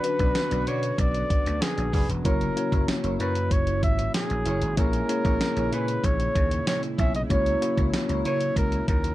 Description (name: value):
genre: 1980s-style pop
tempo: 95 BPM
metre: 4/4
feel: straight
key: F# mixolydian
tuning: A4 = 441 Hz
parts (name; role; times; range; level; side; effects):
- warm flugelhorn; melody; 0.0-9.1 s; G#4 to E5; -29 LUFS; right 1 dB; none
- mellow tine electric piano; accompaniment; 0.0-9.1 s; A#3 to C#5; -30 LUFS; left 3 dB; none
- chorused pulse-width pad; sustained chords; 0.0-9.1 s; A#2 to F#4; -36 LUFS; right 1 dB; phaser
- electric guitar at the edge of break-up; riff; 0.0-9.1 s; E4 to D5; -35 LUFS; right 2 dB; lush chorus, analog delay
- clean 12-bit digital drum machine; drums; 0.0-9.1 s; hi-hat, kick drum, snare drum, tambourine; -26 LUFS; equal; none
- vintage slap bass; bass; 0.2-9.1 s; E1 to C#3; -28 LUFS; equal; none
room: light reverb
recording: dark, warm production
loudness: -22 LUFS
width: side -15 dB against mid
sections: 0.0-9.1 A section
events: none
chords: 0.0 Bm; 2.2 F#7; 4.8 A#m7b5; 7.3 F#7